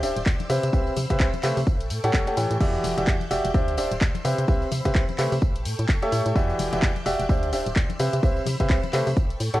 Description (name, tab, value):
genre	piano house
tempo	128 BPM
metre	4/4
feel	swing 58% on 16ths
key	unclear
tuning	A4 = 445 Hz
part	string machine, violins	sustained chords	0.0-9.6 s	A4 to G6	-37 LUFS	equal	ensemble chorus, sidechain pumping, cassette tape
part	clear concert grand piano	riff	0.0-9.6 s	E3 to G5	-26 LUFS	equal	sidechain pumping, cassette tape, tape echo
part	organ-like FM bass	bass	0.0-9.6 s	D1 to C3	-27 LUFS	equal	sidechain pumping
part	house drum kit	drums	0.0-9.6 s	crash cymbal, handclaps, hi-hat, tambourine	-32 LUFS	left 1 dB	cassette tape
part	tambourine and congas	percussion	0.0-9.6 s	none	-40 LUFS	left 9 dB	none
part	electronic kick drum	drums	0.3-9.3 s	none	-22 LUFS	equal	cassette tape
room	digital ambience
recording	home recording on cassette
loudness	-21 LUFS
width	side -16 dB against mid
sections	0.0-9.6 A section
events	none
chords	0.5 Cmaj7; 1.7 A7; 2.6 Em9; 3.5 D9sus4; 4.2 Cmaj7; 5.4 A7; 6.4 Em9; 7.3 D9sus4; 8.0 Cmaj7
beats	0.26 | 0.73 1.20 1.67 2.14 | 2.61 3.08 3.54 4.01 | 4.48 4.95 5.42 5.89 | 6.36 6.83 7.29 7.76 | 8.23 8.70 9.17